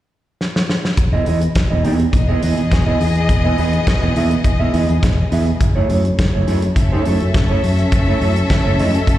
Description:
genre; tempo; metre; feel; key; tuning
disco; 104 BPM; 4/4; straight; E major; A4 = 440 Hz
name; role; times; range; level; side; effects
warm soul drum kit; drums; 0.4-9.2 s; hi-hat, kick drum, snare drum; -19 LUFS; equal; none
mellow electric guitar; accompaniment; 1.0-9.1 s; A3 to E5; -21 LUFS; right 4 dB; slapback echo
fingered electric bass; bass; 1.0-9.2 s; E1 to F#2; -17 LUFS; equal; none
clear studio string section; second line; 2.1-9.2 s; B3 to E5; -22 LUFS; left 2 dB; slapback echo
room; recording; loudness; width
small room ambience; live gig heard through the venue's PA, recital hall reverb; -14 LUFS; side -14 dB against mid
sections
1.0-9.2 A section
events
drum fill 0.4-1.0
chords
0.0 N.C.; 1.0 Emaj7; 5.6 F#m9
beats
0.40 | 0.97 1.55 2.13 2.71 | 3.29 3.87 4.45 5.03 | 5.61 6.18 6.76 7.34 | 7.92 8.50 9.08

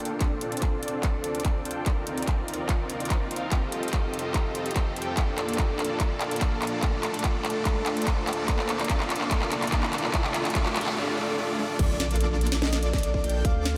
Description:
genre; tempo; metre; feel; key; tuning
future bass; 145 BPM; 4/4; half-time; unclear; A4 = 440 Hz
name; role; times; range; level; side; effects
shimmering ambient pad; sustained chords; 0.0-11.0 s; C2 to D5; -42 LUFS; equal; chorus, built-in reverb, sidechain pumping
concert harp; arpeggios; 0.0-13.8 s; A3 to C5; -39 LUFS; equal; sidechain pumping, analog delay
dense compressed supersaw; riff; 0.0-13.8 s; A3 to G5; -33 LUFS; equal; sidechain pumping, low-pass filter, analog delay
trap drum kit; drums; 0.0-13.7 s; crash cymbal, handclaps, hi-hat, snare drum; -33 LUFS; equal; small room reverb
electronic kick drum; drums; 0.2-13.5 s; none; -29 LUFS; equal; small room reverb
riser, noise sweep and impact; sound effects; 7.5-13.4 s; none; -40 LUFS; equal; none
soft octave-layered synth lead; melody; 11.8-13.7 s; D5 to F5; -37 LUFS; equal; chorus, sidechain pumping, analog delay
airy dreamy lead; arpeggios; 11.8-13.8 s; D6 to G6; -45 LUFS; equal; chorus, sidechain pumping, analog delay
saturated sub bass; bass; 11.8-13.8 s; Bb1 to D2; -29 LUFS; equal; sidechain pumping
room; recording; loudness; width
wet huge ambient reverb, RT60 4.6 s; dreamy mix soaked in reverb; -27 LUFS; mono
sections
0.0-11.8 A section; 11.8-13.8 B section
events
build-up 0.0-11.8; drum fill 0.0-11.0; filter sweep on supersaw synth 0.0-11.8; filter sweep on ambient pad 0.0-11.8; drop 11.8-13.8; impact 11.8-13.4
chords
0.2 Dm7; 1.9 Cm11; 3.5 F9; 5.2 Bbmaj7; 6.8 Dm7; 8.5 Cm11; 10.1 F9; 11.8 Bbmaj7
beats
| 0.21 0.62 1.03 1.45 | 1.86 2.27 2.69 3.10 | 3.52 3.93 4.34 4.76 | 5.17 5.58 6.00 6.41 | 6.83 7.24 7.65 8.07 | 8.48 8.89 9.31 9.72 | 10.14 10.55 10.96 11.38 | 11.79 12.21 12.62 13.03 | 13.45

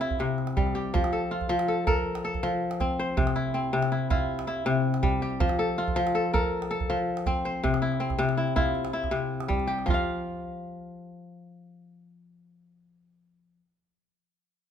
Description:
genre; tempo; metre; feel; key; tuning
west african traditional, West African string and xylophone music; 108 BPM (dotted quarters); 12/8; straight; F major; A4 = 440 Hz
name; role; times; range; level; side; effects
kora; arpeggios; 0.0-13.6 s; C3 to F5; -26 LUFS; left 2 dB; none
calabash; percussion; 0.0-10.0 s; none; -31 LUFS; right 3 dB; none
room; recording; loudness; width
moderate recital hall reverb, RT60 1.5 s; minimal, uncompressed stereo recording; -25 LUFS; side -8 dB against mid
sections
0.0-9.9 A section; 9.9-12.1 B section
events
none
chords
0.0 C; 0.9 F; 3.2 C; 5.4 F; 7.6 C; 9.9 Fsus2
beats
0.38 | 0.94 1.50 2.06 2.61 | 3.17 3.73 4.29 4.84 | 5.40 5.96 6.52 7.07 | 7.63 8.19 8.75 9.30 | 9.86 10.42 10.98 11.54

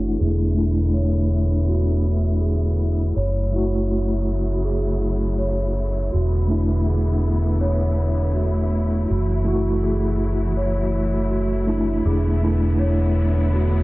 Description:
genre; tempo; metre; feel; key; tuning
trip hop; 81 BPM; 4/4; swing 54% on 16ths; unclear; A4 = 440 Hz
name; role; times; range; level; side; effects
mellow tine electric piano; accompaniment; 0.0-13.8 s; A3 to F#4; -25 LUFS; equal; medium stereo tremolo, tape echo
warm symphonic string section; sustained chords; 0.0-13.8 s; C#3 to C#5; -28 LUFS; left 1 dB; low-pass filter
large celesta; arpeggios; 0.0-13.8 s; F#4 to C#5; -29 LUFS; right 2 dB; low-pass filter, tape echo
deep dub fingered electric bass; bass; 0.0-13.8 s; E1 to F#1; -20 LUFS; equal; none
room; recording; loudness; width
little or no reverb; low-pass filter; -18 LUFS; side -20 dB against mid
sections
0.0-13.8 A section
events
filter sweep on string section 0.0-13.8; filter sweep on celesta 0.0-13.8; filter sweep 0.0-13.8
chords
0.2 E7sus4; 3.2 F#m7; 6.1 E7sus4; 9.1 F#m7; 12.1 E7sus4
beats
| 0.20 0.94 1.68 2.42 | 3.17 3.91 4.65 5.39 | 6.13 6.87 7.61 8.35 | 9.09 9.83 10.57 11.31 | 12.05 12.79 13.54

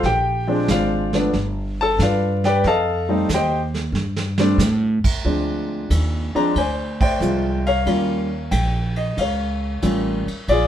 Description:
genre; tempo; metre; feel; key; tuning
jazz piano trio; 92 BPM; 4/4; swing 69% on 8ths; Bb major; A4 = 439 Hz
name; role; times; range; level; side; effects
warm baby grand piano; melody; 0.0-10.7 s; F3 to Bb5; -20 LUFS; left 1 dB; none
upright bass; bass; 0.0-10.7 s; G1 to A2; -22 LUFS; right 1 dB; none
vintage brush drum kit; drums; 0.0-10.7 s; brushed snare drum, crash cymbal, hi-hat, kick drum, ride cymbal, snare drum; -26 LUFS; right 2 dB; none
room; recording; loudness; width
wet studio reverb, RT60 0.8 s; heard from further back in the room; -18 LUFS; side -10 dB against mid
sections
0.0-5.2 A section; 5.2-10.7 B section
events
grand piano solo 0.0-5.2; drum fill 3.9-4.6; band accent 6.9-7.2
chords
0.0 Bb9; 1.3 G7; 2.6 F9; 5.2 Bb9 (rootless); 7.9 Eb9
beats
| 0.03 0.68 1.34 1.99 | 2.64 3.29 3.95 4.60 | 5.25 5.90 6.56 7.21 | 7.86 8.51 9.17 9.82 | 10.47

